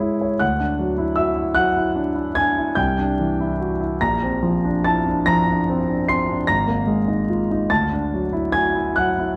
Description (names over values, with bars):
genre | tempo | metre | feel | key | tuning
classical, impressionist solo piano | 45-52 BPM (dotted quarters) | 9/8 | rubato | unclear | A4 = 440 Hz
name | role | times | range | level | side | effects
clear grand piano | solo | 0.0-9.4 s | G#1 to B#6 | -20 LUFS | equal | none
room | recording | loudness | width
wet recital hall reverb, RT60 1.6 s | dark, warm production, vinyl crackle | -20 LUFS | mono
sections
0.0-9.4 A section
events
none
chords
0.4 Dadd9; 2.8 Cadd9; 4.0 A#add9; 6.5 G#sus2; 7.7 Dadd9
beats
| 0.41 1.58 2.77 | 4.00 5.24 6.46 | 7.69 8.96